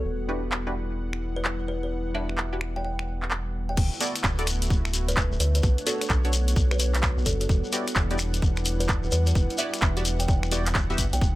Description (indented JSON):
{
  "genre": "UK garage, two-step garage",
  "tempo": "129 BPM",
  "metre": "4/4",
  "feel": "swing 64% on 16ths",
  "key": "E dorian",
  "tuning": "A4 = 440 Hz",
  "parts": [
    { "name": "kalimba", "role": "melody", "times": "0.0-11.3 s", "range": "A4 to G5", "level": "-35 LUFS", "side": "equal", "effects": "digital delay" },
    { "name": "warm analog pad", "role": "sustained chords", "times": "0.0-11.4 s", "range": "G3 to F#5", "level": "-39 LUFS", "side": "equal", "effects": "chorus, sidechain pumping" },
    { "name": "rubbery square bass", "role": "bass", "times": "0.0-11.3 s", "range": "D1 to E2", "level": "-26 LUFS", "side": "equal", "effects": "tube saturation" },
    { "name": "warbly tape-like pad", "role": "texture", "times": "0.0-11.4 s", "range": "D3 to F#5", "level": "-37 LUFS", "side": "left 1 dB", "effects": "chorus, built-in reverb, sidechain pumping" },
    { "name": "punchy chord stab", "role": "stabs", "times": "0.3-11.0 s", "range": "B3 to E5", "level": "-32 LUFS", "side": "equal", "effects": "chorus, digital delay" },
    { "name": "punchy analog drum machine", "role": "drums", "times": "0.5-11.2 s", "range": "crash cymbal, finger snaps, handclaps, hi-hat", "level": "-29 LUFS", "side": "equal", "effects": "none" },
    { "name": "electronic kick drum", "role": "drums", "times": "3.8-11.3 s", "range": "none", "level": "-25 LUFS", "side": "equal", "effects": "none" },
    { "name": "shekere", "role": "percussion", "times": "3.8-11.3 s", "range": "none", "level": "-34 LUFS", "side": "left 3 dB", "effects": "none" }
  ],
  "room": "little or no reverb",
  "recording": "none",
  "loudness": "-23 LUFS",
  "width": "side -17 dB against mid",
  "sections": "0.0-3.8 A section; 3.8-11.4 B section",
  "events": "drop 3.8-11.4",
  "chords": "0.1 Em9; 3.8 D69; 5.6 Bm9; 7.5 Em9"
}